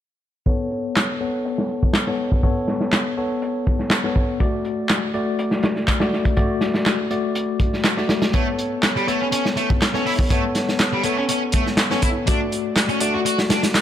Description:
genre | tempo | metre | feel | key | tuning
breakbeat, breaks | 122 BPM | 4/4 | straight | A major | A4 = 441 Hz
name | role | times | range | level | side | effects
tine electric piano | stabs | 0.5-13.8 s | A3 to D5 | -23 LUFS | left 3 dB | medium stereo tremolo, vintage 12-bit sampler grit, low-pass filter, dub echo
crunchy breakbeat drum kit | drums | 0.5-13.8 s | hi-hat, kick drum, snare drum | -21 LUFS | equal | low-pass filter on kick, low-pass filter on hats, low-pass filter on snare, low-pass filter on room
electronic handclaps | drums | 1.0-13.8 s | none | -24 LUFS | equal | none
fuzz guitar | riff | 8.3-13.6 s | G3 to F#4 | -24 LUFS | right 1 dB | distortion, vintage 12-bit sampler grit, dub echo
room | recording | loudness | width
light reverb, small room reverb | none | -18 LUFS | side -10 dB against mid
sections
0.5-13.8 A section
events
filter sweep on drum 0.5-13.8; filter sweep on tine electric piano 0.5-13.8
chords
0.5 Aadd9; 4.4 D/A; 8.3 Aadd9; 12.3 D/A

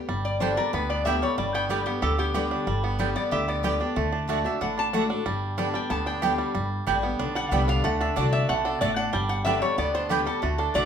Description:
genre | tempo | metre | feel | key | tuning
bluegrass | 186 BPM | 4/4 | straight | G major | A4 = 440 Hz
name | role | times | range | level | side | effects
picked steel-string acoustic guitar | accompaniment | 0.0-10.9 s | G2 to G4 | -30 LUFS | left 3 dB | none
bluegrass banjo | arpeggios | 0.1-10.9 s | G3 to G4 | -29 LUFS | right 5 dB | none
upright bass | bass | 0.1-10.9 s | G1 to D2 | -30 LUFS | equal | none
lap resonator guitar | second line | 0.2-10.9 s | F#4 to A5 | -29 LUFS | left 2 dB | none
mandolin | stabs | 0.4-10.8 s | A3 to G5 | -30 LUFS | right 6 dB | none
room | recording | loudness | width
moderate large studio reverb, RT60 0.8 s | minimal, uncompressed stereo recording | -23 LUFS | side -8 dB against mid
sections
0.1-10.4 A section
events
resonator guitar played with a steel bar solo 0.1-10.9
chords
0.1 G; 4.0 D; 5.3 G; 7.8 D; 9.1 G

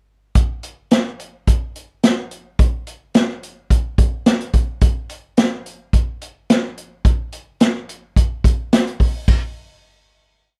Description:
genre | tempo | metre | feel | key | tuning
funk | 108 BPM | 4/4 | straight | none | none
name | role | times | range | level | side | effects
swinging big-band drum kit | drums | 0.4-9.4 s | crash cymbal, hi-hat, kick drum, snare drum | -17 LUFS | equal | none
room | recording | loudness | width
light reverb | faint mains hum | -19 LUFS | mono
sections
0.4-9.3 breakdown; 9.3-10.6 final hit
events
none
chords
none

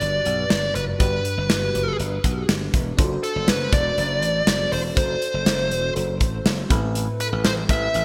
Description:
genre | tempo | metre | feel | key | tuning
1980s-style pop | 121 BPM | 4/4 | straight | G major | A4 = 437 Hz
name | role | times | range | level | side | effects
dark smooth lead guitar | melody | 0.0-8.0 s | A4 to E5 | -26 LUFS | equal | overdrive, digital delay
FM electric piano with soft pad layer | accompaniment | 0.0-8.0 s | G2 to C5 | -31 LUFS | equal | chorus, phaser
slap bass | bass | 0.0-8.0 s | E1 to B1 | -29 LUFS | equal | none
modern studio drum kit | drums | 0.0-8.0 s | hi-hat, kick drum, snare drum | -24 LUFS | equal | gated reverb
room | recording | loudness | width
moderate lush hall reverb, RT60 2.1 s | bright 1980s-style digital production | -22 LUFS | mono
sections
0.0-8.0 A section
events
none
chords
0.0 Gmaj7; 3.0 D7; 6.7 Amadd9

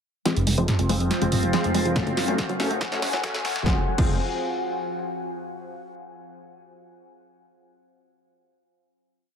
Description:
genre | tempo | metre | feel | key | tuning
driving peak-time techno | 141 BPM | 4/4 | straight | F phrygian | A4 = 443 Hz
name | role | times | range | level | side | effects
wide unison pluck | riff | 0.3-4.2 s | F3 to A3 | -29 LUFS | right 2 dB | sidechain pumping, digital delay
rave stab | stabs | 0.3-4.1 s | F3 to Db4 | -29 LUFS | left 1 dB | chorus, built-in reverb, cassette tape, sidechain pumping, dub echo
overtone-sweeping drone | drone | 0.6-3.7 s | F3 to C4 | -33 LUFS | left 2 dB | chorus, built-in reverb, sidechain pumping
punchy analog drum machine | drums | 0.3-4.1 s | crash cymbal, hi-hat, snare drum, toms | -28 LUFS | right 1 dB | none
deep dark ambient pad | texture | 1.1-5.3 s | F4 to Db6 | -31 LUFS | left 1 dB | chorus, built-in reverb, sidechain pumping
detuned saw bass | bass | 0.4-4.2 s | F1 to Gb1 | -28 LUFS | equal | tube saturation, sidechain pumping
electronic kick drum | drums | 2.0-4.1 s | none | -25 LUFS | equal | overdrive
room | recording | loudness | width
moderate digital room reverb, RT60 1.2 s | heavily compressed radio sound, high-pass filter | -22 LUFS | side -7 dB against mid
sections
0.3-3.7 build; 3.7-5.4 final chord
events
build-up 0.3-3.7; drum fill 0.3-3.7; filter sweep on synth arpeggio sound 0.3-3.7; filter sweep on synth stab 0.3-3.7; filter sweep 0.3-3.7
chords
0.3 Fm; 2.0 Gbm; 3.7 Fm

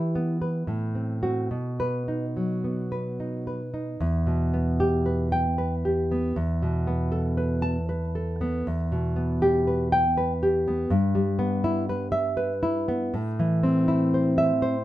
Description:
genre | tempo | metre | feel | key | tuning
romantic piece for solo classical guitar | 70-82 BPM | 3/4 | rubato | E minor | A4 = 440 Hz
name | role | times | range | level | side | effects
nylon-string guitar | solo | 0.0-14.8 s | E2 to A5 | -23 LUFS | equal | none
room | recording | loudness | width
moderate studio reverb, RT60 0.5 s | dark, warm production | -23 LUFS | side -14 dB against mid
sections
0.0-4.0 A section; 4.0-14.8 B section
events
none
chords
0.0 Em; 0.7 F#dim/A; 1.5 B; 4.0 Em; 6.4 Esus4; 8.7 Em; 10.9 Em/G; 13.1 Am

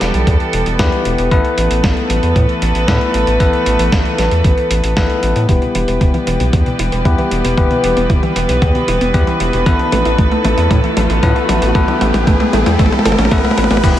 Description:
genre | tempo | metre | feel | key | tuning
italo disco | 115 BPM | 4/4 | straight | unclear | A4 = 442 Hz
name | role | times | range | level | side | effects
rich chamber string section | sustained chords | 0.0-14.0 s | E3 to B4 | -19 LUFS | right 1 dB | none
bell-like tine electric piano | stabs | 0.0-14.0 s | B3 to B4 | -19 LUFS | left 4 dB | low-pass filter, digital delay
round analog bass | bass | 0.0-13.9 s | E1 to A2 | -18 LUFS | equal | none
dusty soul sampler-style drum kit | drums | 0.0-14.0 s | cabasa, crash cymbal, hi-hat, snare drum, toms | -20 LUFS | left 1 dB | gated reverb
electronic kick drum | drums | 0.3-13.9 s | none | -15 LUFS | equal | none
analog pluck | arpeggios | 5.5-14.0 s | B2 to A4 | -21 LUFS | right 2 dB | chorus, vintage 12-bit sampler grit, digital delay
riser | sound effects | 8.9-13.8 s | none | -24 LUFS | equal | none
room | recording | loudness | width
moderate lush hall reverb, RT60 2.0 s | none | -11 LUFS | side -12 dB against mid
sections
0.0-5.5 A section; 5.5-13.8 B section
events
filter sweep on tine electric piano 0.0-5.5, 5.5-13.8; drum fill 5.5-13.8; filter sweep on synth arpeggio sound 5.5-13.8; riser 8.9-13.8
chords
0.0 Em; 1.3 Asus2; 5.5 Em; 9.7 Asus2

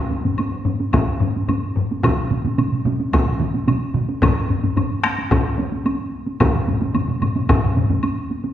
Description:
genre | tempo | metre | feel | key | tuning
japanese traditional, taiko drum ensemble | 110 BPM | 4/4 | straight | none | none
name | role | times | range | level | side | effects
taiko ensemble | percussion | 0.1-8.5 s | none | -23 LUFS | right 2 dB | none
taiko ensemble | percussion | 0.1-8.0 s | none | -23 LUFS | left 3 dB | none
woodblock | percussion | 0.4-8.2 s | none | -30 LUFS | left 2 dB | none
taiko ensemble | percussion | 0.9-7.6 s | none | -22 LUFS | left 1 dB | none
taiko ensemble | percussion | 2.0-8.0 s | none | -23 LUFS | right 2 dB | none
room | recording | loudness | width
wet scoring stage reverb, RT60 1.6 s | recorded in a church or concert hall | -18 LUFS | side -11 dB against mid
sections
0.0-8.5 A section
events
none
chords
none

